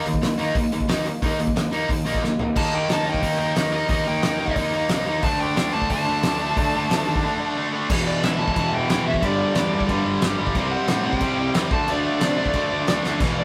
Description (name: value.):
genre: punk rock.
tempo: 180 BPM.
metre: 4/4.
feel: straight.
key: unclear.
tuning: A4 = 440 Hz.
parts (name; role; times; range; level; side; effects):
overdriven electric guitar; riff; 0.0-13.4 s; E2 to Eb4; -30 LUFS; equal; none.
overdriven electric guitar; riff; 0.0-13.4 s; E2 to Eb4; -28 LUFS; equal; none.
fuzz picked electric bass; bass; 0.1-13.4 s; E1 to C3; -32 LUFS; equal; overdrive.
loose indie drum kit; drums; 0.1-13.3 s; crash cymbal, hi-hat, kick drum, snare drum, splash cymbal, toms; -27 LUFS; equal; none.
dark smooth lead guitar; melody; 2.6-13.4 s; D5 to A5; -28 LUFS; equal; overdrive.
thick fuzz guitar; riff; 5.2-13.4 s; E2 to D4; -32 LUFS; equal; none.
room: light reverb.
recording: rough rehearsal-room recording.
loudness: -22 LUFS.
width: mono.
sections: 0.0-2.6 A section; 2.6-7.9 B section; 7.9-13.4 C section.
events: drum fill 2.2-2.6, 13.0; break 7.2-7.9.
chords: 0.0 Eb5; 2.6 Eb; 5.2 D5; 7.9 E5; 9.2 G5; 10.6 C5; 11.7 D5.